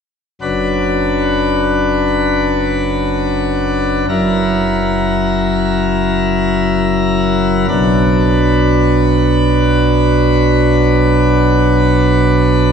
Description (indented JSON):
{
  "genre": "classical, chorale-style piece for pipe organ",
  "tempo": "free time",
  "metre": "none",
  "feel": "none",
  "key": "B minor",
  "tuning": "A4 = 442 Hz",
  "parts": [
    { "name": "pipe organ, plenum", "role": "solo", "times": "0.4-12.7 s", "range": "F#1 to B4", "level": "-11 LUFS", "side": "equal", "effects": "none" }
  ],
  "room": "wet church reverb, RT60 3.1 s",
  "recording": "none",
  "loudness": "-11 LUFS",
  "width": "side -7 dB against mid",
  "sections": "0.4-12.7 A section",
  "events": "none",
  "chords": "0.4 Bm/F#; 4.1 F#7; 7.7 Bm"
}